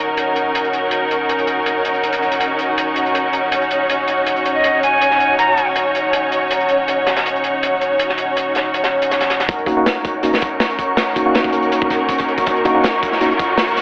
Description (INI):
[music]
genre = drum and bass, jungle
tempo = 161 BPM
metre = 4/4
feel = straight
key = Eb minor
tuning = A4 = 440 Hz
[part]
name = rich symphonic string section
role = sustained chords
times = 0.0-13.8 s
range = Db4 to Db5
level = -17 LUFS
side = equal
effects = low-pass filter
[part]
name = soft dub sub bass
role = bass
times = 0.0-9.5 s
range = Eb1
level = -43 LUFS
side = equal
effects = tube saturation
[part]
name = downlifter and riser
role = sound effects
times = 0.0-0.5, 11.9-13.8 s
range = none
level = -28 LUFS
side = equal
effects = none
[part]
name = crunchy breakbeat drum kit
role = drums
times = 0.2-13.8 s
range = hi-hat, snare drum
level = -23 LUFS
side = equal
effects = high-pass filter on hats, high-pass filter on snare, high-pass filter on room
[part]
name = breathy bright jazz flute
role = melody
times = 4.5-5.7 s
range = Eb5 to Bb5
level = -18 LUFS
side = equal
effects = dub echo
[part]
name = crunchy breakbeat drum kit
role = drums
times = 9.5-13.8 s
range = hi-hat, kick drum, snare drum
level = -20 LUFS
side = equal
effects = none
[part]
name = wind-like tuned noise texture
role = texture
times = 10.0-13.8 s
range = Db6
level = -23 LUFS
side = equal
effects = built-in reverb
[part]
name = tine electric piano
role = stabs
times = 9.7-13.3 s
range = Bb3 to Gb4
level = -18 LUFS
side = equal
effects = low-pass filter, dub echo
[sound]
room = wet lush hall reverb, RT60 2.3 s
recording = telephone sound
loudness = -14 LUFS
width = side -34 dB against mid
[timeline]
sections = 0.0-9.5 A section; 9.5-13.8 B section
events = build-up 9.5-13.8; filter sweep on string section 9.5-13.8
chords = 0.0 Ebm7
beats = 0.17 | 0.54 0.92 1.29 1.66 | 2.03 2.40 2.78 3.15 | 3.52 3.90 4.27 4.64 | 5.01 5.39 5.76 6.13 | 6.50 6.88 7.25 7.62 | 8.00 8.37 8.74 9.11 | 9.49 9.86 10.23 10.60 | 10.98 11.35 11.72 12.10 | 12.47 12.84 13.21 13.59